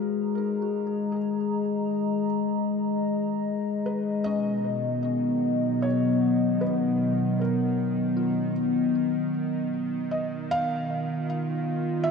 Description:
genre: ambient.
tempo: 77 BPM.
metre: 4/4.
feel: straight.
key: unclear.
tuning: A4 = 441 Hz.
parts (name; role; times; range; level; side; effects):
felt-muted upright piano; melody; 0.0-12.1 s; G#4 to F5; -34 LUFS; right 1 dB; ping-pong delay.
warbly tape-like pad; sustained chords; 0.0-12.1 s; B2 to A#5; -24 LUFS; left 2 dB; chorus, built-in reverb.
soft synth bell; arpeggios; 0.0-10.5 s; C#4 to G#4; -46 LUFS; right 2 dB; none.
bowed-like drone; drone; 0.9-12.1 s; D#3; -36 LUFS; right 2 dB; built-in reverb.
room: wet cathedral reverb, RT60 5.3 s.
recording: dreamy mix soaked in reverb.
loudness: -24 LUFS.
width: side -5 dB against mid.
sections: 0.0-12.1 A section.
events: fade-in on synth drone 0.0-12.1; fade-in on felt piano 0.0-12.1; filter sweep on ambient pad 0.0-12.1.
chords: 0.0 D#m; 4.3 B; 10.5 Dm.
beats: 0.36 | 1.14 1.92 2.70 3.48 | 4.25 5.03 5.81 6.59 | 7.37 8.15 8.93 9.71 | 10.49 11.27 12.05.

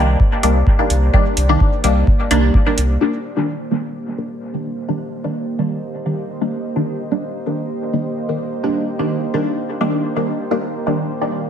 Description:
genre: dub techno.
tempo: 128 BPM.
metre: 4/4.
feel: straight.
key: C minor.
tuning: A4 = 439 Hz.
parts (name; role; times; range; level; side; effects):
deep dark ambient pad; sustained chords; 0.0-11.5 s; Bb3 to Eb5; -25 LUFS; right 1 dB; chorus, built-in reverb, sidechain pumping.
filtered dub chord stab; stabs; 0.0-11.5 s; Eb3 to D4; -20 LUFS; equal; phaser, vintage 12-bit sampler grit, sidechain pumping, dub echo.
warm sub bass; bass; 0.0-3.0 s; C2; -15 LUFS; equal; sidechain pumping.
electronic kick drum; drums; 0.2-2.6 s; none; -15 LUFS; equal; none.
electronic hi-hat; drums; 0.4-2.9 s; none; -23 LUFS; right 2 dB; none.
room: moderate digital room reverb, RT60 1.0 s.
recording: none.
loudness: -16 LUFS.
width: side -8 dB against mid.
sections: 0.0-3.0 A section; 3.0-11.5 B section.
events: none.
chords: 0.0 Cm7.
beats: 0.20 0.67 | 1.14 1.60 2.07 2.54 | 3.01 3.48 3.95 4.42 | 4.89 5.36 5.82 6.29 | 6.76 7.23 7.70 8.17 | 8.64 9.11 9.57 10.04 | 10.51 10.98 11.45.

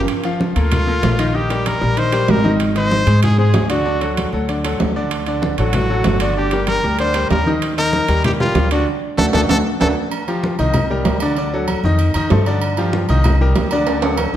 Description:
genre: latin, salsa.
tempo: 192 BPM.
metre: 4/4.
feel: straight.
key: unclear.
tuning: A4 = 440 Hz.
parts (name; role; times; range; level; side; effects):
bright baby grand piano; accompaniment; 0.0-14.3 s; D3 to F5; -20 LUFS; left 1 dB; none.
upright bass; bass; 0.0-14.4 s; G1 to Ab2; -19 LUFS; equal; none.
congas; percussion; 0.1-14.4 s; none; -24 LUFS; equal; none.
timbales and agogo bells; percussion; 0.1-14.3 s; none; -23 LUFS; right 4 dB; none.
clear trumpet; melody; 0.6-9.9 s; F4 to C5; -21 LUFS; equal; none.
room: moderate recital hall reverb, RT60 1.6 s.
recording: none.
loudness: -14 LUFS.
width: side -11 dB against mid.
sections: 0.1-10.1 A section; 10.1-14.4 B section.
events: band accent 8.9-10.1; drum fill 9.7-10.1, 13.9-14.4.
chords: 0.1 Bbmaj7; 1.3 Eb/Bb; 2.6 Ab; 3.9 D; 6.4 Gm; 7.6 Eb; 8.9 D; 10.1 Cmadd11; 10.7 Cm7; 11.4 D; 12.0 F7; 12.6 G5; 13.2 Cm7.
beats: | 0.09 0.41 0.72 1.03 | 1.35 1.66 1.98 2.29 | 2.60 2.92 3.23 3.54 | 3.86 4.17 4.48 4.80 | 5.11 5.42 5.74 6.05 | 6.36 6.68 6.99 7.30 | 7.62 7.93 8.24 8.56 | 8.87 9.18 9.50 9.81 | 10.12 10.43 10.75 11.06 | 11.37 11.69 12.00 12.31 | 12.62 12.94 13.25 13.56 | 13.87 14.19.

